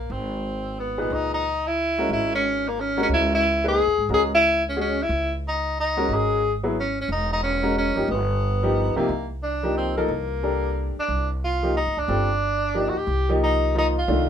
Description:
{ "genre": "modal jazz", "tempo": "180 BPM", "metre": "3/4", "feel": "swing 63% on 8ths", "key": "C# dorian, C dorian from 9.1 s", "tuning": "A4 = 441 Hz", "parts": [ { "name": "clear tenor saxophone", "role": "melody", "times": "0.0-14.3 s", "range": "A#3 to G#4", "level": "-23 LUFS", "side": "left 1 dB", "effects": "none" }, { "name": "upright bass", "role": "bass", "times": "0.0-14.3 s", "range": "E1 to G#2", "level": "-27 LUFS", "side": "right 1 dB", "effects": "none" }, { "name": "bright upright piano", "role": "accompaniment", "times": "1.0-14.3 s", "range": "Bb2 to Cb5", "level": "-25 LUFS", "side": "left 1 dB", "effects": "none" } ], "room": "moderate studio ambience, RT60 0.5 s", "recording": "minimal, uncompressed stereo recording", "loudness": "-21 LUFS", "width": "side -8 dB against mid", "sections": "0.0-1.1 A section; 1.1-9.1 B section; 9.1-14.3 C section", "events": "none", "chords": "0.1 Ab; 1.1 C#m69; 8.1 G7alt; 9.1 Cm11" }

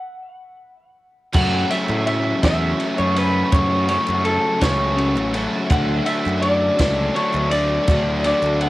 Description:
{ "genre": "indie rock", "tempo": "55 BPM (dotted quarters)", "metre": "6/8", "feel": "straight", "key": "unclear", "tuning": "A4 = 440 Hz", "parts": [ { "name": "electric guitar through a small old amp", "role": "melody", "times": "0.0-8.7 s", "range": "A4 to F#5", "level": "-22 LUFS", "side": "equal", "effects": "cassette tape, tape echo" }, { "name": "chorused pulse-width pad", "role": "sustained chords", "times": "1.3-8.7 s", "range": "F#4 to C#6", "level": "-34 LUFS", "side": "right 2 dB", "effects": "none" }, { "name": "crunchy overdriven guitar", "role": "riff", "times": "1.3-8.7 s", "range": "F#2 to D4", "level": "-23 LUFS", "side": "left 2 dB", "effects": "none" }, { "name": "scooped high-gain guitar", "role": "riff", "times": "1.3-8.7 s", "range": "D3 to F#4", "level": "-30 LUFS", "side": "right 6 dB", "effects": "distortion, ensemble chorus" }, { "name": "fuzz fingered electric bass", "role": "bass", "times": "1.3-8.7 s", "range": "A1 to A2", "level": "-23 LUFS", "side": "equal", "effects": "overdrive" }, { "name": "compact cocktail drum kit", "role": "drums", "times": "1.3-8.7 s", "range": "crash cymbal, kick drum, ride cymbal, snare drum", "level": "-24 LUFS", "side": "equal", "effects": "cassette tape" }, { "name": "group handclap", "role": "percussion", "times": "1.3-8.6 s", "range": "none", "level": "-36 LUFS", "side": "right 7 dB", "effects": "none" } ], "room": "light reverb", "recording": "home recording on cassette", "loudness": "-17 LUFS", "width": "side -17 dB against mid", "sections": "0.0-1.3 A section; 1.3-8.7 B section", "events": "stop 0.0-1.3", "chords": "0.0 N.C.; 1.3 F#m7; 5.7 Dadd9" }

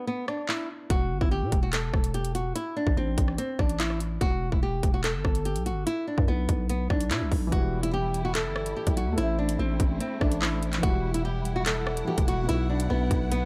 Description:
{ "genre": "hip hop, drill", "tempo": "145 BPM", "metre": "4/4", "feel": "half-time", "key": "E minor", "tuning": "A4 = 441 Hz", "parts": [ { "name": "flamenco guitar", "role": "melody", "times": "0.0-13.5 s", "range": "B3 to A4", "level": "-33 LUFS", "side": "equal", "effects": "none" }, { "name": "drill drum kit", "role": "drums", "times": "0.3-13.4 s", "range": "handclaps, hi-hat, kick drum, rim click", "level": "-30 LUFS", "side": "equal", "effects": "none" }, { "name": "growling 808-style bass", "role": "bass", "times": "0.9-13.5 s", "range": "E1 to B2", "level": "-32 LUFS", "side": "equal", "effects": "none" }, { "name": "dark concert grand piano", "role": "accompaniment", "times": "7.5-13.5 s", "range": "B2 to E5", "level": "-36 LUFS", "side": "equal", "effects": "none" }, { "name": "warm studio string section", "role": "sustained chords", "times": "7.5-13.5 s", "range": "E3 to F#5", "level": "-40 LUFS", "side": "equal", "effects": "none" } ], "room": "little or no reverb", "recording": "dark, warm production", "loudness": "-27 LUFS", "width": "mono", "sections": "0.0-7.5 A section; 7.5-13.5 B section", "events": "break 0.0-0.9", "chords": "0.0 N.C.; 0.9 Em; 2.6 Am; 4.2 Em; 5.9 B5; 7.5 Em; 9.2 Am; 10.8 Emadd9; 12.5 Bsus4" }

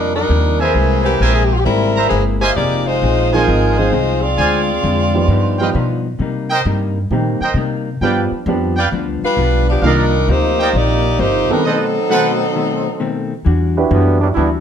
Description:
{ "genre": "jazz, big band swing", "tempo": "132 BPM", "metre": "4/4", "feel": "swing 67% on 8ths", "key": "C minor", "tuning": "A4 = 439 Hz", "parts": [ { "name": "warm saxophone section", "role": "melody", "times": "0.0-6.0, 9.2-13.3 s", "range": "E3 to D5", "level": "-17 LUFS", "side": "left 1 dB", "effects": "plate reverb" }, { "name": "vintage hollow-body jazz guitar", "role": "accompaniment", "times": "0.0-14.6 s", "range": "G2 to Ab4", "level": "-22 LUFS", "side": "left 5 dB", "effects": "none" }, { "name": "upright bass", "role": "bass", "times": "0.0-14.6 s", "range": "F1 to C3", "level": "-17 LUFS", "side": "equal", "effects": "none" }, { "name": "bright trumpet section", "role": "stabs", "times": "0.6-12.3 s", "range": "A4 to Bb5", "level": "-19 LUFS", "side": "right 3 dB", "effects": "none" }, { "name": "warm baby grand piano", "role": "accompaniment", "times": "3.3-14.3 s", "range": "B2 to B4", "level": "-19 LUFS", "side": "right 4 dB", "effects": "none" }, { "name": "brilliant trombone section", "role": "second line", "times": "13.9-14.5 s", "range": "D3 to E4", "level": "-17 LUFS", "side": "right 4 dB", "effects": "none" } ], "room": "moderate large studio reverb, RT60 0.9 s", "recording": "none", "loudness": "-13 LUFS", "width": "side -8 dB against mid", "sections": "0.0-13.5 A section; 13.5-14.6 B section", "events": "break 11.6-13.5; trombone section solo 13.5-14.6", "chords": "0.0 Cm11; 0.8 C7b13; 2.6 Fm7; 4.4 Dm7b5; 5.3 G7b13; 6.2 Cm7; 8.0 G7; 9.8 Cm11; 11.6 B7b9; 13.5 Em9" }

